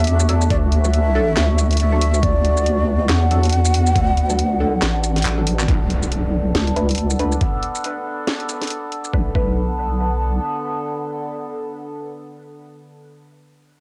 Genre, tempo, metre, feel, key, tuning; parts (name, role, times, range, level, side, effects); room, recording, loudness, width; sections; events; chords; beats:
deep dubstep; 139 BPM; 4/4; swing 58% on 16ths, half-time; B minor; A4 = 441 Hz
breathy mellow ney; melody; 0.0-5.3 s; D5 to F#5; -26 LUFS; equal; cassette tape, dub echo
overtone-sweeping drone; sustained chords; 0.0-12.7 s; D3 to A4; -29 LUFS; equal; chorus, built-in reverb, cassette tape
deep soft wobble bass; bass; 0.0-10.4 s; A1 to E2; -20 LUFS; equal; chorus, tube saturation
garage drum kit; drums; 0.0-9.1 s; handclaps, hi-hat, shaker, snare drum; -26 LUFS; equal; cassette tape
filtered dub chord stab; stabs; 0.3-12.9 s; F#3 to B4; -30 LUFS; equal; phaser, analog chorus, cassette tape, dub echo
electronic kick drum; drums; 0.5-9.5 s; -22 LUFS; equal; overdrive, cassette tape
impact; sound effects; 5.7-7.4 s; -30 LUFS; equal
light reverb; home recording on cassette; -19 LUFS; mono
0.0-5.7 A section; 5.7-9.1 B section; 9.1-12.6 C section
drop 0.0-5.7; drum fill 5.3-5.7; impact 5.7-7.4
0.0 D; 5.7 Bm7
0.07 | 0.50 0.94 1.37 1.80 | 2.23 2.66 3.09 3.52 | 3.96 4.39 4.82 5.25 | 5.68 6.12 6.55 6.98 | 7.41 7.84 8.27 8.71 | 9.14 9.57 10.00 10.43 | 10.86 11.29 11.73 12.16